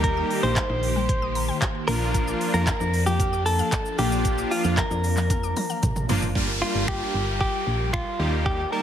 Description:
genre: dance-pop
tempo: 114 BPM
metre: 4/4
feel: straight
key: Bb major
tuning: A4 = 437 Hz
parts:
  - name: direct-recorded clean electric guitar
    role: melody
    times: 0.0-8.8 s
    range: F4 to C5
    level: -27 LUFS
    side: equal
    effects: spring reverb, digital delay
  - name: big bright polysynth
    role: accompaniment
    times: 0.0-8.8 s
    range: F3 to A5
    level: -28 LUFS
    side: equal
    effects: sidechain pumping
  - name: string machine, violas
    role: sustained chords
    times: 0.0-8.8 s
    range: Eb3 to Bb4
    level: -33 LUFS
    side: left 1 dB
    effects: phaser, ensemble chorus, sidechain pumping
  - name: mallet-like synth pluck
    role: arpeggios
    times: 0.0-6.2 s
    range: F3 to G6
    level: -34 LUFS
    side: left 8 dB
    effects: chorus, sidechain pumping, digital delay
  - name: solid FM bass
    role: bass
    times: 0.0-8.6 s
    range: G1 to F2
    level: -26 LUFS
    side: equal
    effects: sidechain pumping
  - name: pop drum kit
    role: drums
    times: 0.0-8.6 s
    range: finger snaps, handclaps, hi-hat, kick drum, shaker, toms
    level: -27 LUFS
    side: equal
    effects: none
  - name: downlifter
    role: sound effects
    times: 6.4-8.8 s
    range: none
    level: -32 LUFS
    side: equal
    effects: none
room: light reverb, digital ambience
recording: heavily compressed radio sound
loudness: -21 LUFS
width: side -10 dB against mid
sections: 0.0-6.4 A section; 6.4-8.8 B section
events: drum fill 5.3-6.4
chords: 0.0 Eb; 1.9 Bb; 6.4 Gm7; 8.2 Eb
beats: | 0.04 0.57 1.09 1.62 | 2.15 2.67 3.20 3.72 | 4.25 4.78 5.30 5.83 | 6.36 6.88 7.41 7.93 | 8.46

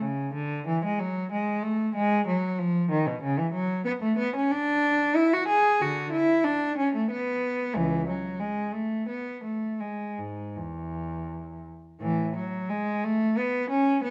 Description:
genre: classical, baroque-style suite movement for unaccompanied cello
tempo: 78-96 BPM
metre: 3/4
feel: rubato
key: A major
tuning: A4 = 441 Hz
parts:
  - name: rich cello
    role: solo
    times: 0.0-14.1 s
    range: C#2 to G#4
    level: -27 LUFS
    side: equal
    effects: none
room: moderate stone room reverb, RT60 1.3 s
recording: none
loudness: -27 LUFS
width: mono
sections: 0.0-12.0 A section; 12.0-14.1 B section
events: none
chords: none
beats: | 0.02 0.67 1.31 | 1.93 2.57 3.22 | 3.85 4.50 5.15 | 5.80 6.44 7.10 | 7.76 8.41 9.09 | 9.81 10.55 11.28 | 12.02 12.71 13.37 | 14.03

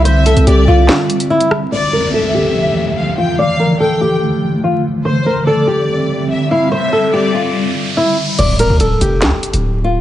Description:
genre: hip hop, drill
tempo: 144 BPM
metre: 4/4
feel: half-time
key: D minor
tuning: A4 = 440 Hz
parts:
  - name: flamenco guitar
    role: melody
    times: 0.0-10.0 s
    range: E4 to D5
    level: -15 LUFS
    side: left 1 dB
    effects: low-pass filter
  - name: warm symphonic violin section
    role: second line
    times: 0.0-7.5 s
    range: C5 to G5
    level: -21 LUFS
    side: left 2 dB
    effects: digital delay
  - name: granular cloud pad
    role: sustained chords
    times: 0.0-8.4 s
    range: D3 to E5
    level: -18 LUFS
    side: equal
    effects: built-in reverb, low-pass filter
  - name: distorted 808-style bass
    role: bass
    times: 0.0-0.9, 8.4-10.0 s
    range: D1 to D2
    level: -12 LUFS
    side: equal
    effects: distortion
  - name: drill drum kit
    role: drums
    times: 0.1-1.6, 8.4-9.6 s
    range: crash cymbal, handclaps, hi-hat, rim click, snare drum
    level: -18 LUFS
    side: equal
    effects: none
  - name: downlifter, riser and impact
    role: sound effects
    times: 1.7-10.0 s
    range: none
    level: -24 LUFS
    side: equal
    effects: none
room: light reverb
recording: vinyl crackle, nothing above 11.0 kHz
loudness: -11 LUFS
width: side -12 dB against mid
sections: 0.0-1.7 A section; 1.7-8.4 B section; 8.4-10.0 C section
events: break 0.9-1.7; filter sweep 1.7-8.4; riser 6.4-8.4; impact 8.4-10.0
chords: 0.0 Cadd9; 1.7 Dmadd9; 5.1 Cadd9; 8.4 Dm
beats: | 0.05 0.47 0.89 1.30 | 1.72 2.14 2.55 2.97 | 3.39 3.80 4.22 4.64 | 5.05 5.47 5.89 6.30 | 6.72 7.14 7.55 7.97 | 8.39 8.80 9.22 9.64

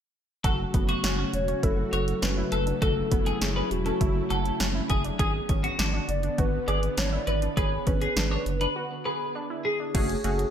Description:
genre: synth-pop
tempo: 101 BPM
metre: 4/4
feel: straight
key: F# minor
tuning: A4 = 440 Hz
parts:
  - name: twelve-string electric guitar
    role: second line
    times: 0.4-9.8 s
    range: F#4 to D5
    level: -32 LUFS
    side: left 2 dB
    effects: wide subtle chorus, digital delay
  - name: string machine, violas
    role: sustained chords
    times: 0.4-9.9 s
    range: C#3 to F#4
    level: -33 LUFS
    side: left 1 dB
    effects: ensemble chorus
  - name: warbly dusty pluck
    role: arpeggios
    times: 0.4-9.9 s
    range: B3 to G#4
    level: -36 LUFS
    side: right 3 dB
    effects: chorus, digital delay
  - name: round analog bass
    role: bass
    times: 0.4-10.5 s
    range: E1 to G#1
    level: -29 LUFS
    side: equal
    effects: none
  - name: punchy analog drum machine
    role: drums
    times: 0.4-10.5 s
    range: crash cymbal, hi-hat, kick drum, snare drum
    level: -28 LUFS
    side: equal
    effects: gated reverb
  - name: hollow clarinet-like synth lead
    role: melody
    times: 1.3-10.5 s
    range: F#4 to D5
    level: -32 LUFS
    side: left 1 dB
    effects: chorus
  - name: funky polysynth comp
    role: accompaniment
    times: 9.9-10.5 s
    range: A3 to G#4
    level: -28 LUFS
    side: right 2 dB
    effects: chorus
room: moderate plate reverb, RT60 1.6 s, digital ambience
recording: bright 1980s-style digital production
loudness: -24 LUFS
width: side -9 dB against mid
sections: 0.4-9.9 A section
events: break 8.8-9.9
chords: 0.4 F#m; 5.2 G#dim; 9.9 F#madd9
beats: | 0.44 1.04 1.63 2.22 | 2.82 3.41 4.01 4.60 | 5.19 5.79 6.38 6.98 | 7.57 8.16 8.76 9.35 | 9.95

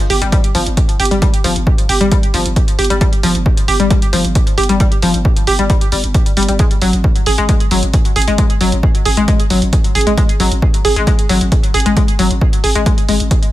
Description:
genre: driving peak-time techno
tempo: 134 BPM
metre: 4/4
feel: straight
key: unclear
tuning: A4 = 443 Hz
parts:
  - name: analog pluck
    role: riff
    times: 0.1-13.1 s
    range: F3 to Ab4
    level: -16 LUFS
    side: left 1 dB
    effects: chorus, sidechain pumping, tape echo
  - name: growling 808-style bass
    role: bass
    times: 0.1-13.3 s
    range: G1 to Ab1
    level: -18 LUFS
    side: equal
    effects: overdrive, sidechain pumping, low-pass filter
  - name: electronic hi-hat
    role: drums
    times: 0.1-13.5 s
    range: none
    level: -21 LUFS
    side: right 2 dB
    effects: small room reverb
  - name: electronic kick drum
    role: drums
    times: 0.3-13.4 s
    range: none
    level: -13 LUFS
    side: equal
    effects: small room reverb
room: little or no reverb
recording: none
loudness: -11 LUFS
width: side -15 dB against mid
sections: 0.0-13.5 A section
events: none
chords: none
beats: 0.32 0.77 | 1.22 1.67 2.12 2.56 | 3.01 3.46 3.91 4.35 | 4.80 5.25 5.70 6.14 | 6.59 7.04 7.49 7.94 | 8.38 8.83 9.28 9.73 | 10.18 10.62 11.07 11.52 | 11.97 12.41 12.86 13.31

